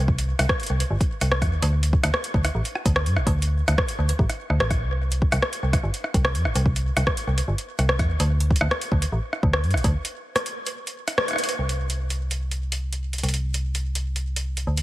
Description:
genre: IDM.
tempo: 146 BPM.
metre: 4/4.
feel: straight.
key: unclear.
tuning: A4 = 440 Hz.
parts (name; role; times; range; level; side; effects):
metallic FM bass; bass; 0.0-14.8 s; G1 to G2; -23 LUFS; equal; none.
electronic kick drum; drums; 0.1-9.9 s; none; -23 LUFS; equal; none.
booming analog drum machine; drums; 0.2-14.8 s; hi-hat, rim click; -26 LUFS; equal; digital delay.
room: light reverb.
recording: heavily compressed radio sound.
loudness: -21 LUFS.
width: side -16 dB against mid.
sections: 0.0-11.6 A section; 11.6-14.8 B section.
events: break 9.9-11.6; band accent 11.2; drum fill 11.4.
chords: none.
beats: | 0.08 0.49 0.90 1.31 | 1.73 2.14 2.55 2.96 | 3.37 3.78 4.19 4.60 | 5.01 5.42 5.84 6.25 | 6.66 7.07 7.48 7.89 | 8.30 8.71 9.12 9.53 | 9.95 10.36 10.77 11.18 | 11.59 12.00 12.41 12.82 | 13.23 13.64 14.05 14.47.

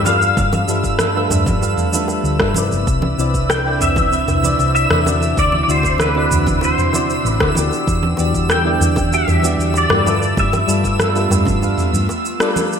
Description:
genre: sunset chillout.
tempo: 96 BPM.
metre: 4/4.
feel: straight.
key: unclear.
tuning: A4 = 440 Hz.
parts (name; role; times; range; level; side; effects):
pedal steel guitar; melody; 0.0-12.2 s; B4 to G5; -20 LUFS; left 1 dB; ensemble chorus, ping-pong delay, shimmer reverb.
soft electric-piano-like synth keys; accompaniment; 0.0-12.8 s; C3 to F5; -22 LUFS; moving between left 6 dB and right 6 dB; chorus, auto-pan, ping-pong delay, shimmer reverb.
airy breathy pad; sustained chords; 0.0-12.8 s; C3 to B4; -26 LUFS; right 1 dB; chorus, shimmer reverb.
hollow-body short-scale fingered electric bass; bass; 0.0-12.1 s; G1 to G2; -19 LUFS; equal; none.
bongos and congas; percussion; 0.0-12.7 s; none; -27 LUFS; right 2 dB; none.
twinkling granular texture; texture; 0.0-12.8 s; E6; -26 LUFS; right 2 dB; built-in reverb, shimmer reverb.
smooth R&B drum kit; drums; 0.1-12.8 s; rim click, shaker, toms; -21 LUFS; equal; gated reverb.
electronic kick drum; drums; 0.4-11.6 s; none; -22 LUFS; equal; overdrive.
room: moderate lush hall reverb, RT60 1.9 s.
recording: bright 1980s-style digital production.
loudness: -14 LUFS.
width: side -7 dB against mid.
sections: 0.0-12.8 A section.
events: band accent 12.4-12.7.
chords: 0.4 G13; 2.9 Cmaj9; 5.4 D9; 7.9 Em9; 10.4 G13.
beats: | 0.37 1.00 1.62 2.25 | 2.87 3.50 4.12 4.75 | 5.37 6.00 6.62 7.25 | 7.87 8.50 9.12 9.75 | 10.37 11.00 11.62 12.25.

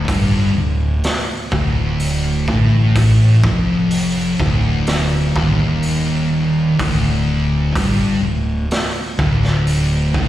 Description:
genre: stoner and doom metal.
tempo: 63 BPM.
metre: 4/4.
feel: straight.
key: D minor.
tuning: A4 = 440 Hz.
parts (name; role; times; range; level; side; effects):
thick fuzz guitar; riff; 0.0-10.3 s; D2 to A2; -17 LUFS; left 2 dB; distortion.
thick fuzz guitar; riff; 0.0-10.3 s; D2 to A2; -23 LUFS; right 8 dB; distortion.
fuzz fingered electric bass; bass; 0.0-10.3 s; D1 to A1; -21 LUFS; right 1 dB; overdrive, tube saturation.
raw garage drum kit; drums; 0.1-10.3 s; hi-hat, kick drum, snare drum; -20 LUFS; right 1 dB; none.
room: little or no reverb.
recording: live gig heard through the venue's PA, recital hall reverb.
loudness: -14 LUFS.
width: side -13 dB against mid.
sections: 0.0-10.3 A section.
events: none.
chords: 0.0 Dm.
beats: 0.08 1.04 2.00 | 2.96 3.92 4.88 5.83 | 6.79 7.75 8.70 9.66.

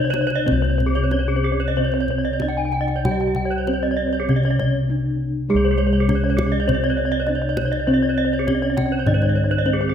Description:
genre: Balinese gamelan.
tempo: 90-101 BPM.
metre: 4/4.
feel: straight.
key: C pelog.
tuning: A4 = 440 Hz.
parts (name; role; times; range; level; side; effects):
gamelan-type bronze metallophone; melody; 0.0-9.9 s; Ab3-40c to G4-45c; -26 LUFS; right 2 dB; none.
gamelan-type bronze metallophone; accompaniment; 0.0-9.9 s; C3 to Ab3-40c; -27 LUFS; right 2 dB; none.
gamelan-type bronze metallophone; arpeggios; 0.0-9.9 s; Ab4-40c to Ab5-40c; -26 LUFS; left 4 dB; none.
gamelan-type bossed gongs; bass; 0.0-9.9 s; C2 to Ab4-40c; -21 LUFS; left 1 dB; none.
gamelan-type bronze metallophone; arpeggios; 0.1-9.9 s; Ab4-40c to Ab5-40c; -26 LUFS; right 3 dB; none.
kendang; percussion; 0.1-9.7 s; none; -28 LUFS; left 1 dB; none.
room: moderate scoring stage reverb, RT60 1.7 s.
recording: none.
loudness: -18 LUFS.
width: side -8 dB against mid.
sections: 0.0-5.5 A section; 5.5-9.9 B section.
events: break 4.6-5.5; drum fill 4.7-5.5.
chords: none.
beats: | 0.46 1.12 1.77 2.41 | 3.05 3.67 4.29 4.90 | 5.50 6.09 6.68 7.28 | 7.88 8.47 9.07 9.66.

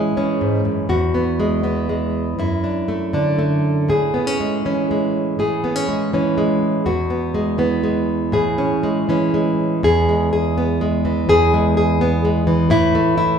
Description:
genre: folk, solo fingerstyle acoustic guitar.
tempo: 116-128 BPM.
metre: 3/4.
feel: rubato.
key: A major.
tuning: A4 = 441 Hz.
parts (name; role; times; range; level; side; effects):
nylon-string guitar; solo; 0.0-13.4 s; E2 to G#4; -16 LUFS; equal; none.
room: wet recital hall reverb, RT60 1.4 s.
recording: recorded in a church or concert hall.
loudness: -16 LUFS.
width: side -7 dB against mid.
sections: 0.0-9.8 A section; 9.8-13.4 B section.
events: none.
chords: 0.0 Amaj7; 0.9 Eadd9; 2.4 Dadd9/F#; 3.9 Amaj7; 6.9 Eadd9; 8.3 Amaj7; 9.8 E; 12.7 A5.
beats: 0.41 | 0.89 1.38 1.88 | 2.38 2.88 3.38 | 3.89 4.40 4.90 | 5.40 5.89 6.37 | 6.86 7.34 7.83 | 8.32 8.82 9.33 | 9.83 10.32 10.80 | 11.28 11.76 12.23 | 12.70 13.17.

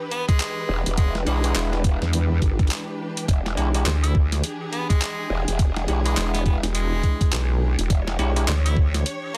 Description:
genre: glitch hop.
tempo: 104 BPM.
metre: 4/4.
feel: swing 60% on 16ths.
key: unclear.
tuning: A4 = 441 Hz.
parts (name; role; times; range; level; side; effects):
warm studio string section; sustained chords; 0.0-9.4 s; E3 to C#5; -35 LUFS; equal; sidechain pumping.
edgy tenor saxophone; melody; 0.1-9.4 s; G#3 to E4; -34 LUFS; equal; digital delay.
boom bap sampler-style drum kit; drums; 0.1-9.4 s; handclaps, hi-hat, snare drum; -31 LUFS; equal; soft clipping on snare.
electronic kick drum; drums; 0.3-8.9 s; none; -22 LUFS; equal; none.
growl bass; bass; 0.7-8.5 s; E1 to B1; -26 LUFS; equal; chorus, overdrive.
bell-like tine electric piano; stabs; 1.3-8.5 s; G#3 to B4; -33 LUFS; equal; sidechain pumping, digital delay.
vowel-sweep wobble bass; bass; 2.0-9.0 s; E1 to E2; -24 LUFS; equal; chorus.
room: light reverb.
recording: dense, heavily limited modern master.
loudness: -22 LUFS.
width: mono.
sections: 0.0-9.4 A section.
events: none.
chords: 0.0 E7#9.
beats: 0.40 | 0.98 1.55 2.13 2.71 | 3.29 3.86 4.44 5.02 | 5.59 6.17 6.75 7.32 | 7.90 8.48 9.05.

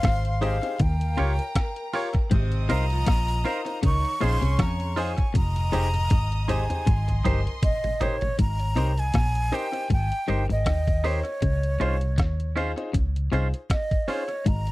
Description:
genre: lovers rock reggae.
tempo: 79 BPM.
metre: 4/4.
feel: swing 55% on 16ths.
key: Ab major.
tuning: A4 = 440 Hz.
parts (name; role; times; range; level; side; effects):
breathy jazz flute; melody; 0.0-14.7 s; Db5 to Db6; -30 LUFS; equal; tape echo.
warm studio violin section; second line; 0.0-8.4 s; Bb4 to Eb6; -38 LUFS; equal; none.
twangy electric guitar; riff; 0.0-14.7 s; F2 to F3; -31 LUFS; left 4 dB; harmonic tremolo.
vintage muted fingered electric bass; bass; 0.0-14.7 s; F1 to F2; -25 LUFS; equal; none.
detuned 8-bit digital drum machine; drums; 0.0-14.7 s; hi-hat, kick drum, rim click, toms; -25 LUFS; equal; none.
bright grand piano; accompaniment; 0.4-14.2 s; Eb4 to Db5; -30 LUFS; left 2 dB; none.
twangy electric guitar; stabs; 0.4-14.2 s; Ab3 to Db5; -30 LUFS; right 6 dB; none.
warm horn section; second line; 2.3-4.9 s; C3 to F4; -35 LUFS; right 2 dB; none.
room: little or no reverb.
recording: dry, close 1970s-style studio recording.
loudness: -22 LUFS.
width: side -18 dB against mid.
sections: 0.0-8.4 A section; 8.4-14.7 B section.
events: drum fill 5.3-8.4.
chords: 0.0 Fm9; 0.8 Eb9; 2.3 Ab69; 3.8 Dbmaj7; 5.3 Fm9; 6.9 Abmaj7; 11.4 Dbmaj7.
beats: 0.04 0.80 1.56 | 2.32 3.07 3.83 4.59 | 5.35 6.11 6.87 7.63 | 8.38 9.14 9.90 10.66 | 11.42 12.18 12.94 13.70 | 14.46.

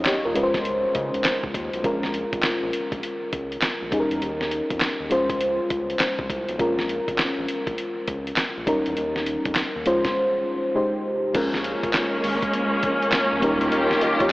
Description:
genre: R&B, new jack swing.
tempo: 101 BPM.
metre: 4/4.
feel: swing 64% on 16ths.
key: Bb dorian.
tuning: A4 = 439 Hz.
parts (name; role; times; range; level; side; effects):
mellow FM electric piano; accompaniment; 0.0-14.3 s; G3 to Eb5; -24 LUFS; equal; chorus.
round analog bass; bass; 0.0-14.3 s; Ab1 to Db3; -35 LUFS; equal; none.
dusty soul sampler-style drum kit; drums; 0.0-14.3 s; crash cymbal, handclaps, hi-hat, kick drum, snare drum; -26 LUFS; equal; none.
warm studio string section; sustained chords; 11.4-14.3 s; Eb3 to G4; -22 LUFS; equal; none.
room: wet cathedral reverb, RT60 7.0 s.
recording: dreamy mix soaked in reverb, AM radio sound.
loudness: -21 LUFS.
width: side -19 dB against mid.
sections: 0.0-11.3 A section; 11.3-14.3 B section.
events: none.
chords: 0.4 Dbmaj7; 1.8 Bbm7; 3.9 Eb7; 5.1 Dbmaj7; 6.6 Bbm7; 8.7 Eb7; 9.9 Dbmaj7; 10.8 Abmaj7; 11.3 Bbm7; 13.4 Eb7.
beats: 0.06 0.65 1.25 | 1.84 2.44 3.03 3.62 | 4.22 4.81 5.41 6.00 | 6.59 7.19 7.78 8.38 | 8.97 9.56 10.16 10.75 | 11.35 11.94 12.53 13.13 | 13.72 14.32.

